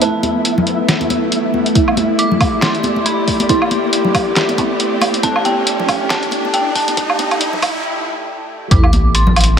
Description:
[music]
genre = deep dubstep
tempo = 138 BPM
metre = 4/4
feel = swing 57% on 16ths, half-time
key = A minor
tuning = A4 = 440 Hz
[part]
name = dark detuned synth bell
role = melody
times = 0.0-9.6 s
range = G5 to D6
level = -22 LUFS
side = equal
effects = chorus, dub echo
[part]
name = bowed-like drone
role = sustained chords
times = 0.0-9.6 s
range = A3 to G4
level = -20 LUFS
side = equal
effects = built-in reverb
[part]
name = filtered dub chord stab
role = stabs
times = 0.0-5.4, 8.7-8.8 s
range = A3 to E4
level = -23 LUFS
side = right 6 dB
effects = none
[part]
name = trip hop sampler-style drum kit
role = drums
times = 0.0-9.5 s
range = handclaps, hi-hat, snare drum, woodblock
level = -18 LUFS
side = right 1 dB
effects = none
[part]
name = riser and sub drop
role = sound effects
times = 0.0-9.6 s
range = none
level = -23 LUFS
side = equal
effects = none
[part]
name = flickering grainy texture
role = texture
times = 0.0-9.6 s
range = A3 to E5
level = -25 LUFS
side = left 1 dB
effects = built-in reverb
[part]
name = congas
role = percussion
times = 0.2-9.3 s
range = none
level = -22 LUFS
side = left 2 dB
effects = none
[part]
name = electronic kick drum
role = drums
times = 1.8-8.8 s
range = none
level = -16 LUFS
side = equal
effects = none
[part]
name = soft dub sub bass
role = bass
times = 8.7-9.6 s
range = A1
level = -13 LUFS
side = equal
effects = none
[sound]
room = light reverb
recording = high-pass filter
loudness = -13 LUFS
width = side -8 dB against mid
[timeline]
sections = 0.0-8.7 A section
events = build-up 0.0-8.7; riser 0.0-7.8; filter sweep 0.0-8.7; break 7.8-8.7; impact 8.7-9.6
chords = 0.0 A5; 8.7 Am

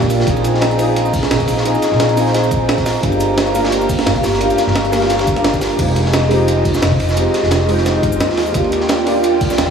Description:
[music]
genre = liquid drum and bass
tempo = 174 BPM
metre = 4/4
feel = swing 53% on 16ths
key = F dorian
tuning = A4 = 440 Hz
[part]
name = felt-muted upright piano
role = accompaniment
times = 0.0-9.7 s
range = Ab3 to Ab4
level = -18 LUFS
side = right 1 dB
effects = analog chorus, tape echo
[part]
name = airy breathy pad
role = sustained chords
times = 0.0-9.7 s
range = F4 to Bb5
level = -19 LUFS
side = equal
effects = chorus, sidechain pumping
[part]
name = upright bass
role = bass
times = 0.0-9.7 s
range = F1 to Eb2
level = -20 LUFS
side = left 1 dB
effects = none
[part]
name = breakbeat sampler-style drum kit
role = drums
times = 0.0-9.7 s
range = crash cymbal, hi-hat, shaker, snare drum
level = -21 LUFS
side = right 1 dB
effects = none
[part]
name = electronic kick drum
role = drums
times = 0.0-9.7 s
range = none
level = -21 LUFS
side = equal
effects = overdrive
[part]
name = crunchy breakbeat drum kit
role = drums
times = 0.1-9.7 s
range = hi-hat, ride cymbal, snare drum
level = -24 LUFS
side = equal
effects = high-pass filter on cymbals, high-pass filter on hats, high-pass filter on snare, high-pass filter on room
[sound]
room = wet huge ambient reverb, RT60 6.4 s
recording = dreamy mix soaked in reverb, studio ambience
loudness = -13 LUFS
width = side -6 dB against mid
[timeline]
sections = 0.0-5.8 A section; 5.8-9.7 A section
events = drop 0.0-5.8, 5.8-9.7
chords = 0.3 Bb7sus4; 3.0 Gm7; 5.8 Fm7; 8.5 Ebmaj9

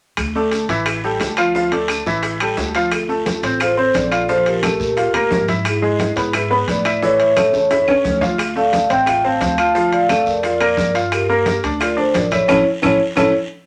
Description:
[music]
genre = latin, salsa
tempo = 176 BPM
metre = 4/4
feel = straight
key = D minor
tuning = A4 = 440 Hz
[part]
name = upright bass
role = bass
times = 0.2-13.3 s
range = A1 to Bb2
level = -30 LUFS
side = equal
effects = none
[part]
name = bongos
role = percussion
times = 0.2-13.2 s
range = none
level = -34 LUFS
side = equal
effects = none
[part]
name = claves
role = percussion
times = 0.2-13.2 s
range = none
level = -27 LUFS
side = equal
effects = none
[part]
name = guiro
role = percussion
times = 0.2-13.2 s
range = none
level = -36 LUFS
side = equal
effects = none
[part]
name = maracas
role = percussion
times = 0.2-13.2 s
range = none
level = -41 LUFS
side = equal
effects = none
[part]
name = timbales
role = percussion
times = 0.2-13.2 s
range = none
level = -28 LUFS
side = equal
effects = none
[part]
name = bright upright piano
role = accompaniment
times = 0.4-13.3 s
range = E3 to F5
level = -22 LUFS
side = equal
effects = none
[part]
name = vibraphone with soft mallets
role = melody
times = 2.9-13.3 s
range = E4 to A5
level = -20 LUFS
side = equal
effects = none
[part]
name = congas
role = percussion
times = 2.9-13.2 s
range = none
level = -28 LUFS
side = equal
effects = none
[sound]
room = moderate studio reverb, RT60 0.5 s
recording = none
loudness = -17 LUFS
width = mono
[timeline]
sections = 0.2-2.9 A section; 2.9-13.7 B section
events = drum fill 7.5-8.4, 12.8-13.7; band accent 12.5-13.7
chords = 0.2 D5; 0.9 A5; 1.5 Dm; 2.2 A5; 2.9 Dm7; 4.3 Bb5; 5.7 E7/G#; 7.0 A; 8.4 Dm7; 9.8 Bbmaj7/D; 11.1 Gm7; 12.5 A

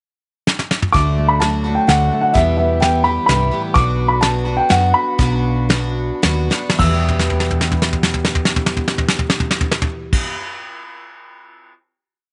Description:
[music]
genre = indie folk with a building arrangement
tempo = 103-129 BPM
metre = 3/4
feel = straight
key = E minor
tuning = A4 = 438 Hz
[part]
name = soft brush drum kit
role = drums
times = 0.5-11.7 s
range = crash cymbal, hi-hat, kick drum, snare drum, toms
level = -20 LUFS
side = equal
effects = none
[part]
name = dark upright piano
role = melody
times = 0.9-10.2 s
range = E5 to E6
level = -20 LUFS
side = equal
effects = tape echo
[part]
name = fingerpicked steel-string acoustic guitar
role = accompaniment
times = 0.9-3.8 s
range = E2 to G4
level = -26 LUFS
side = equal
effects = none
[part]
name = picked twelve-string acoustic guitar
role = accompaniment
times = 0.9-10.4 s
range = E2 to G4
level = -25 LUFS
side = equal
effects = none
[part]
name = hollow-body short-scale picked electric bass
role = bass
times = 0.9-10.2 s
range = B1 to F#2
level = -22 LUFS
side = equal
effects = none
[sound]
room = small room ambience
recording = nothing above 11.0 kHz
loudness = -17 LUFS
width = mono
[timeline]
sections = 0.0-0.9 pickup bar; 0.9-6.8 pre-chorus; 6.8-10.3 final chord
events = drum fill 0.5-0.9, 6.5, 7.1-10.1; slowing down 3.8-6.8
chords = 0.0 N.C.; 0.9 D; 2.4 Em; 3.8 Bm; 6.8 Em

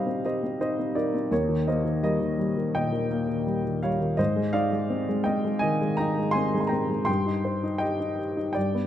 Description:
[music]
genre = classical, lyrical solo piano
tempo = 83 BPM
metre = 4/4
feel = rubato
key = C minor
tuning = A4 = 440 Hz
[part]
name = warm baby grand piano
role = solo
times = 0.0-8.9 s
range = Eb2 to C6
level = -24 LUFS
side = equal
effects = none
[sound]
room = moderate scoring stage reverb, RT60 1.5 s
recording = none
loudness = -24 LUFS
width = side -11 dB against mid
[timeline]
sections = 0.0-8.9 A section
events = none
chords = 0.0 Cm; 1.3 Eb7; 4.2 Ab; 7.1 Cm/G

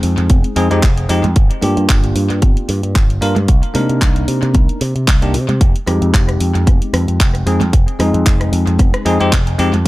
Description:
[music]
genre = nu-disco, nu disco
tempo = 113 BPM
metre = 4/4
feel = swing 55% on 16ths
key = F dorian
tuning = A4 = 440 Hz
[part]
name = bell-like tine electric piano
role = accompaniment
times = 0.0-9.7 s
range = Ab3 to Bb4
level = -19 LUFS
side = left 1 dB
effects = lush chorus, sidechain pumping, analog delay
[part]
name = picked electric bass with an envelope filter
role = bass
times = 0.0-9.9 s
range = F1 to C3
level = -16 LUFS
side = equal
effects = sidechain pumping
[part]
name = house drum kit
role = drums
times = 0.0-9.9 s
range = handclaps, hi-hat, rim click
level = -22 LUFS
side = equal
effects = analog delay
[part]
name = electronic kick drum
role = drums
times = 0.3-9.9 s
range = none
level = -12 LUFS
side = equal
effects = none
[part]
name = congas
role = percussion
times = 0.3-9.8 s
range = none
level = -23 LUFS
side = equal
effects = none
[sound]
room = digital ambience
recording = echo-heavy mix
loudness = -12 LUFS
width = side -18 dB against mid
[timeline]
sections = 0.0-9.9 A section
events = none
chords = 0.0 Fm9; 1.4 Gm7; 3.5 Cm9; 5.6 Fm9

